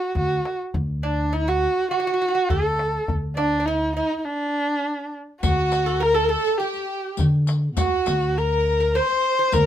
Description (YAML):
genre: Persian modal ensemble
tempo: 102 BPM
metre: 4/4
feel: straight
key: D dastgah homayun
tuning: A4 = 439 Hz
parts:
  - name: rich kamancheh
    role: melody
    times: 0.0-9.7 s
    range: D4 to C5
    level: -22 LUFS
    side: equal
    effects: none
  - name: upright bass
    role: bass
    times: 0.1-9.7 s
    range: D2 to D3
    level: -24 LUFS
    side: equal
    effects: none
  - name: tombak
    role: percussion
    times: 0.2-9.7 s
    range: none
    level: -26 LUFS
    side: left 1 dB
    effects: none
  - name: lute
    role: second line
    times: 1.0-9.7 s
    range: D4 to C5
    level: -28 LUFS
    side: right 5 dB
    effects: none
  - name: rich studio violin section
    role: second line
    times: 5.4-9.7 s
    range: F#4 to C5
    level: -31 LUFS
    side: left 2 dB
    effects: none
  - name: riq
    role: percussion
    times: 5.4-9.7 s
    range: none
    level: -33 LUFS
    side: left 7 dB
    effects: none
room: light reverb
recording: minimal, uncompressed stereo recording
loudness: -20 LUFS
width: side -10 dB against mid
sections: 0.0-5.4 A section; 5.4-9.7 B section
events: stop 4.3-5.4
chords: none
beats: 0.15 | 0.74 1.33 1.91 2.50 | 3.09 3.67 4.26 4.85 | 5.43 6.02 6.61 7.19 | 7.78 8.36 8.95 9.53